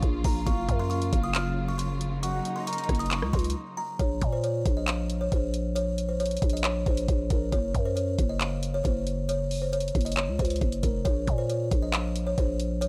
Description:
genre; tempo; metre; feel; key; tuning
hip hop, trap; 136 BPM; 4/4; half-time; Bb minor; A4 = 440 Hz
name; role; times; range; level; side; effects
buzzing kalimba; melody; 0.0-12.9 s; Bb4 to F6; -34 LUFS; equal; none
warm symphonic string section; sustained chords; 0.0-4.0 s; Db3 to F4; -38 LUFS; equal; none
growling 808-style bass; bass; 0.0-12.9 s; F1 to Bb2; -31 LUFS; equal; none
trap drum kit; drums; 0.0-12.9 s; handclaps, hi-hat, kick drum, rim click; -31 LUFS; equal; none
soft octave-layered synth lead; second line; 0.5-3.1 s; F5 to Bb5; -38 LUFS; equal; chorus, tremolo, delay
room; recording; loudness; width
little or no reverb; none; -28 LUFS; mono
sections
0.0-4.0 A section; 4.0-12.9 B section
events
break 3.6-4.0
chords
0.5 Gbmaj7; 4.0 Bbmadd9; 7.5 Gb5; 11.1 Bbmadd9

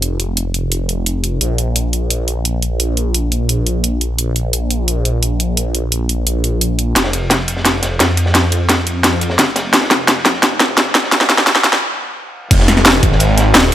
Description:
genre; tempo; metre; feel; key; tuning
dark technical drum and bass; 173 BPM; 4/4; straight; F phrygian; A4 = 440 Hz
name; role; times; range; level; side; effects
phased detuned saw bass; bass; 0.0-13.7 s; Eb1 to F2; -17 LUFS; equal; phaser, tube saturation, sidechain pumping
drum and bass drum kit; drums; 0.0-13.7 s; crash cymbal, hi-hat, snare drum; -13 LUFS; equal; overdrive
crunchy breakbeat drum kit; drums; 7.0-13.7 s; ride cymbal, snare drum; -22 LUFS; equal; high-pass filter on cymbals, high-pass filter on snare, high-pass filter on room
electronic kick drum; drums; 12.5-13.1 s; none; -12 LUFS; equal; overdrive
room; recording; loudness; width
light reverb; high-pass filter; -12 LUFS; side -12 dB against mid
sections
0.0-7.0 A section; 7.0-12.5 B section; 12.5-13.7 C section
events
build-up 7.0-12.5; drum fill 7.0-11.8; stop 11.8-12.5; drop 12.5-13.7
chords
none

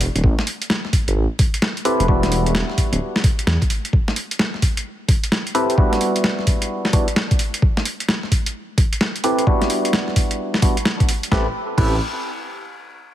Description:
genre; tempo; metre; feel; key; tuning
UK garage, two-step garage; 130 BPM; 4/4; swing 64% on 16ths; A minor; A4 = 440 Hz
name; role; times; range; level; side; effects
dark detuned saw bass; bass; 0.0-3.6, 11.3-12.0 s; D1 to E2; -20 LUFS; equal; none
boom bap sampler-style drum kit; drums; 0.0-11.9 s; crash cymbal, hi-hat, snare drum; -22 LUFS; equal; overdrive
electronic kick drum; drums; 0.2-11.9 s; none; -18 LUFS; equal; overdrive
percussive organ stab; stabs; 1.9-12.0 s; G3 to B4; -21 LUFS; equal; chorus, digital delay
room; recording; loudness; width
light reverb, digital ambience; heavily compressed radio sound, multiband compression; -17 LUFS; side -12 dB against mid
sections
0.0-11.3 A section; 11.3-13.1 B section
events
filter sweep on synth stab 0.0-11.3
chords
0.2 Am9; 2.1 Em9; 3.9 Am9; 5.8 Em9; 7.6 Am9; 9.5 Em9; 11.3 Am9

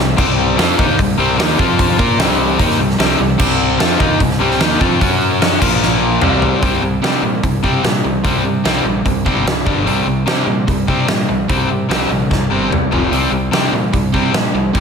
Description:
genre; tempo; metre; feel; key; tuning
hard rock; 148 BPM; 4/4; straight; C minor; A4 = 440 Hz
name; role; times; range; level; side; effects
cranked stack guitar; riff; 0.0-14.8 s; F2 to Bb4; -18 LUFS; left 9 dB; overdrive, slapback echo
crunchy overdriven guitar; riff; 0.0-14.8 s; F2 to Bb4; -19 LUFS; right 10 dB; slapback echo
fuzz fingered electric bass; bass; 0.0-14.8 s; F1 to C3; -22 LUFS; equal; overdrive
huge arena drum kit; drums; 0.2-14.8 s; crash cymbal, hi-hat, kick drum, snare drum, toms; -17 LUFS; equal; none
room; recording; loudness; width
moderate lush hall reverb, RT60 1.6 s; big arena sound; -12 LUFS; side -6 dB against mid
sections
0.0-6.6 A section; 6.6-14.8 B section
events
drum fill 0.0, 5.8-6.6, 12.3-13.1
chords
0.0 Cm; 1.6 F5; 2.0 Cm; 5.0 F#5; 5.6 Bb5; 6.2 C5; 9.7 G5; 9.9 C5; 12.9 F5; 13.1 C5

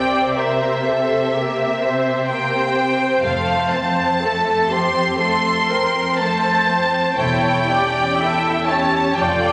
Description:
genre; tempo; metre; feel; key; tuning
classical, slow romantic movement for string orchestra; 61 BPM; 4/4; rubato; unclear; A4 = 441 Hz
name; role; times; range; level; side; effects
rich symphonic violin section; melody; 0.0-9.5 s; E5 to C6; -22 LUFS; equal; none
warm symphonic violin section; second line; 0.0-9.5 s; A3 to C5; -24 LUFS; equal; none
warm symphonic viola section; accompaniment; 0.0-9.5 s; G4 to E5; -26 LUFS; equal; none
rich symphonic double bass section; bass; 0.0-9.5 s; E1 to C2; -31 LUFS; equal; none
warm symphonic cello section; bass; 0.0-9.5 s; E2 to C3; -28 LUFS; equal; none
room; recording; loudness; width
wet concert hall reverb, RT60 1.8 s; none; -18 LUFS; mono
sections
0.0-9.5 A section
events
none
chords
0.0 C7; 3.3 F; 7.2 A7/E

